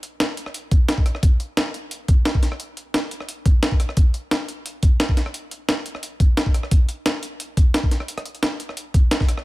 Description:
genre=drum and bass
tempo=175 BPM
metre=4/4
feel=straight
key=none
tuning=none
part: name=breakbeat sampler-style drum kit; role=drums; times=0.0-9.4 s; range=hi-hat, rim click, snare drum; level=-24 LUFS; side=equal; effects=none
part: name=electronic kick drum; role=drums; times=0.7-9.3 s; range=none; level=-16 LUFS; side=equal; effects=none
room=little or no reverb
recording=none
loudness=-18 LUFS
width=side -20 dB against mid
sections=0.0-9.4 A section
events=none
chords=none

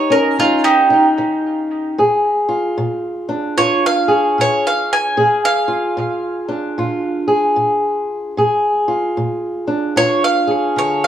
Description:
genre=acoustic country blues, solo or duo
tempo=75 BPM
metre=4/4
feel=swing 63% on 8ths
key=Bb mixolydian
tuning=A4 = 440 Hz
part: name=bowl-back mandolin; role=melody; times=0.0-11.1 s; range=Eb4 to Ab5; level=-16 LUFS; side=right 2 dB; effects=tape echo
part: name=fingerpicked old ladder-braced acoustic guitar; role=accompaniment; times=0.0-11.1 s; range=Bb2 to Ab4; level=-16 LUFS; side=left 1 dB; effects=none
room=moderate spring reverb, RT60 2.0 s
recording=cassette tape, small room ambience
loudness=-14 LUFS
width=side -10 dB against mid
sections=0.0-11.1 A section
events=none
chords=0.0 Eb7; 2.0 Bb7

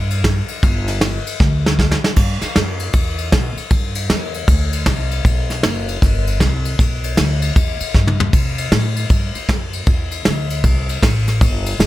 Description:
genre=rockabilly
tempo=156 BPM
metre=4/4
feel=swing 64% on 8ths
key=G major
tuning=A4 = 438 Hz
part: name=upright bass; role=bass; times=0.0-11.9 s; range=F#1 to C3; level=-19 LUFS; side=equal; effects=none
part: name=soft brush drum kit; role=drums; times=0.1-11.9 s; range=crash cymbal, kick drum, ride cymbal, snare drum, toms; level=-16 LUFS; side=equal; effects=none
room=little or no reverb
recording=none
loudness=-15 LUFS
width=side -16 dB against mid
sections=0.0-2.2 A section; 2.2-11.9 B section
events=drum fill 1.4-2.2, 7.9-8.3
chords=none

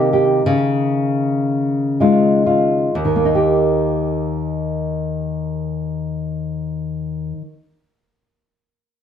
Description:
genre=folk, solo fingerstyle acoustic guitar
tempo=free time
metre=none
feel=none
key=Eb mixolydian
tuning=A4 = 440 Hz
part: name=nylon-string guitar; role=solo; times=0.0-7.7 s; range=Eb2 to G4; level=-16 LUFS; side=left 1 dB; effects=slapback echo
room=light reverb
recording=close, detailed microphones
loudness=-16 LUFS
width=side -8 dB against mid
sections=0.0-2.9 A section; 2.9-8.8 B section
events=slowing down 0.0-2.9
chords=0.4 Dbadd9; 2.9 Eb

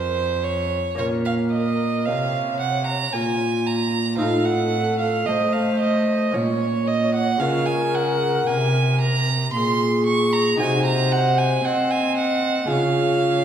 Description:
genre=classical, baroque-style sonata movement with continuo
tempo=56 BPM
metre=3/4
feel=straight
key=Bb minor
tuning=A4 = 440 Hz
part: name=warm violin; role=second line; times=0.0-13.4 s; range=C5 to Db6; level=-23 LUFS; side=right 4 dB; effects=none
part: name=lute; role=accompaniment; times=0.0-13.4 s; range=F2 to Gb4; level=-26 LUFS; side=equal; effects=none
part: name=warm cello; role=bass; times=0.0-13.4 s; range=F2 to C4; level=-24 LUFS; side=right 2 dB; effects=none
part: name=mellow baroque flute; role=melody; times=1.0-13.4 s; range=F4 to Eb5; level=-25 LUFS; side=left 5 dB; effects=none
room=wet recital hall reverb, RT60 1.6 s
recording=none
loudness=-18 LUFS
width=side -9 dB against mid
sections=1.0-13.4 A section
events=none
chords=0.0 F; 1.0 Bbm; 4.2 F7/A; 6.4 Bbm; 7.4 Db; 10.6 Ab7/C; 12.7 Db

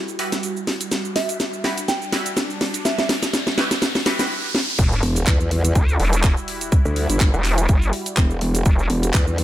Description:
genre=bass house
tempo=124 BPM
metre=4/4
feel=swing 55% on 16ths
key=E minor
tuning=A4 = 440 Hz
part: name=sweeping resonant pad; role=sustained chords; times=0.0-9.4 s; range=G3 to F#4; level=-31 LUFS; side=right 1 dB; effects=chorus, sidechain pumping
part: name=riser and sub drop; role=sound effects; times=0.6-6.7 s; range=none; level=-29 LUFS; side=equal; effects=none
part: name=garage drum kit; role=drums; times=0.1-9.4 s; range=cabasa, crash cymbal, handclaps, hi-hat, snare drum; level=-23 LUFS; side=equal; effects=none
part: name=band-passed chord stab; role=stabs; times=0.2-4.3 s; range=E4 to B4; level=-27 LUFS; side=right 1 dB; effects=phaser, lush chorus, vintage 12-bit sampler grit, sidechain pumping, digital delay
part: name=soft synth bell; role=melody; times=1.2-3.1 s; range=E5 to G5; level=-28 LUFS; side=right 3 dB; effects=chorus, phaser, digital delay
part: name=vowel-sweep wobble bass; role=bass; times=4.8-8.9 s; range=E1 to D2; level=-19 LUFS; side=equal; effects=chorus, overdrive, sidechain pumping
part: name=electronic kick drum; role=drums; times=4.8-9.2 s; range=none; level=-17 LUFS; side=equal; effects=none
part: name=growl bass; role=bass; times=5.0-9.4 s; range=E1 to E2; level=-20 LUFS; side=equal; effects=chorus, tube saturation, sidechain pumping
room=light reverb, digital ambience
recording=none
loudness=-18 LUFS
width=side -13 dB against mid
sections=0.0-4.8 A section; 4.8-9.4 B section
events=build-up 0.0-4.8; drum fill 0.0-4.3, 4.5; filter sweep on analog synth pad 0.0-4.8; riser 0.6-4.8; stop 4.3-4.8; drop 4.8-9.4; impact 4.8-6.7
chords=0.0 Emadd9

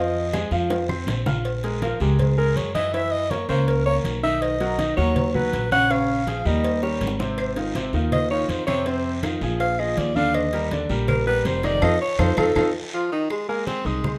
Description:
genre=Afro-Cuban jazz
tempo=162 BPM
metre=4/4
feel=straight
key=Bb minor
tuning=A4 = 440 Hz
part: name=breathy alto saxophone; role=melody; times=0.0-14.2 s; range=Eb4 to F#5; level=-26 LUFS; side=equal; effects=none
part: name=clear baby grand piano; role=accompaniment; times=0.0-14.2 s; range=C3 to F6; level=-29 LUFS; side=equal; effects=none
part: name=upright bass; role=bass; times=0.0-14.2 s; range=F1 to Gb2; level=-27 LUFS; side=equal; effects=none
part: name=congas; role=percussion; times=0.2-14.2 s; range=none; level=-33 LUFS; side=equal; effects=none
part: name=claves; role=percussion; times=0.3-1.1, 7.4-14.2 s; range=none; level=-38 LUFS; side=equal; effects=none
part: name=cowbell and bongos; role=percussion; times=0.3-14.2 s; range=none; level=-34 LUFS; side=equal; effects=none
part: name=guiro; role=percussion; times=0.3-14.2 s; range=none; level=-40 LUFS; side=equal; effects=none
part: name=bright tenor saxophone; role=second line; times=12.9-14.2 s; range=Eb3 to C4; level=-33 LUFS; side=equal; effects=none
room=light reverb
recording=none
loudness=-22 LUFS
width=mono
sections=0.0-1.4 A section; 1.4-13.3 A section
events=alto saxophone solo 0.0-13.3; drum fill 0.3-1.4, 6.8-7.4, 12.2-13.3; band accent 11.8-13.3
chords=0.0 Fm7; 0.7 F5; 1.4 Bbm7; 2.9 Gb7; 4.4 Bmaj7; 5.9 Bbm7; 6.6 Eb7; 7.4 Ab6; 8.9 Fm7; 9.6 Bb7; 10.3 Ebmaj7; 11.8 F7; 13.3 Bb9sus4

